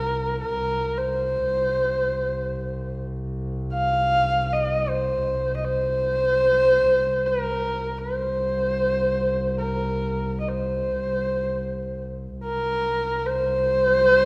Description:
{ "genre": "mongolian traditional, Mongolian folk", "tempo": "free time", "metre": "none", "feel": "none", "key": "C yu mode", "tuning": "A4 = 439 Hz", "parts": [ { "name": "warm horsehead fiddle", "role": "melody", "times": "0.0-14.3 s", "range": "Bb4 to F5", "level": "-24 LUFS", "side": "equal", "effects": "none" }, { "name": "warm double bass", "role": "drone", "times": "0.0-14.3 s", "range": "C2", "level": "-32 LUFS", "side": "equal", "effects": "none" } ], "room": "wet recital hall reverb, RT60 1.7 s", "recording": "none", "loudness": "-24 LUFS", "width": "mono", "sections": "0.0-14.3 A section", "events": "none", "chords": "none", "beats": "free time" }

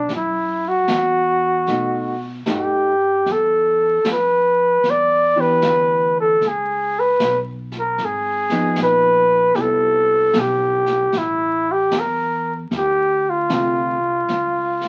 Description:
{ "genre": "jazz ballad", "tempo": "76 BPM", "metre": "4/4", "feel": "swing 66% on 8ths", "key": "unclear", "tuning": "A4 = 440 Hz", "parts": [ { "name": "trumpet with bucket mute", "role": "melody", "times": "0.0-14.9 s", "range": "D4 to D5", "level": "-19 LUFS", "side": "equal", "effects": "none" }, { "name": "upright bass", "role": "bass", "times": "0.0-14.9 s", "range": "Ab1 to B2", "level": "-33 LUFS", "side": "equal", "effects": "none" }, { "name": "jazz brush drum kit", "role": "drums", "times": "0.1-14.9 s", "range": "brushed snare drum, hi-hat, snare drum", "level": "-31 LUFS", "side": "equal", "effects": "none" }, { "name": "hollow-body jazz guitar", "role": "accompaniment", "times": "1.7-14.0 s", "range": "D3 to G4", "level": "-26 LUFS", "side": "equal", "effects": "none" } ], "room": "moderate studio reverb, RT60 0.5 s", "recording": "very old 78 rpm record, vinyl crackle", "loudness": "-18 LUFS", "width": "mono", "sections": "0.0-14.9 A section", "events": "none", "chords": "0.1 Esus2; 1.7 B7b13; 3.3 Em7; 6.4 Db9; 9.6 Cmaj7; 11.1 A5; 12.7 Dm7; 14.3 Db", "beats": "| 0.09 0.88 1.67 2.46 | 3.25 4.04 4.83 5.62 | 6.41 7.20 7.99 8.77 | 9.56 10.35 11.13 11.92 | 12.71 13.50 14.29" }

